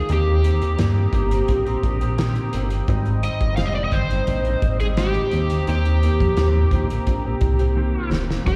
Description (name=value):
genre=indie pop, bedroom pop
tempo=86 BPM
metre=4/4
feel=straight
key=unclear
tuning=A4 = 441 Hz
part: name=overdriven slide guitar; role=melody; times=0.0-8.6 s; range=G4 to F5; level=-28 LUFS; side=equal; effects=subtle chorus, slapback echo, tape echo
part: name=semi-hollow electric guitar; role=accompaniment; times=0.0-8.6 s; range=Ab2 to Bb4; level=-31 LUFS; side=equal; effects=lush chorus, warbly pitch drift, slapback echo
part: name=warbly tape-like pad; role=sustained chords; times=0.0-8.6 s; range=Bb4 to Eb6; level=-35 LUFS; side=equal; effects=chorus, built-in reverb
part: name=chorused synth bass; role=bass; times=0.0-8.6 s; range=Eb1 to G2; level=-23 LUFS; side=equal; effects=none
part: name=loose indie drum kit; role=drums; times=0.1-8.6 s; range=hi-hat, kick drum, snare drum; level=-27 LUFS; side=equal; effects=none
room=small room ambience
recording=live gig heard through the venue's PA, recital hall reverb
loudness=-20 LUFS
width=mono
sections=0.0-8.5 A section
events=drum fill 7.8-8.5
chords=0.1 Eb6; 2.9 Abmaj7; 5.3 Eb6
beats=| 0.10 0.80 1.49 2.19 | 2.89 3.58 4.28 4.98 | 5.68 6.38 7.07 7.77 | 8.47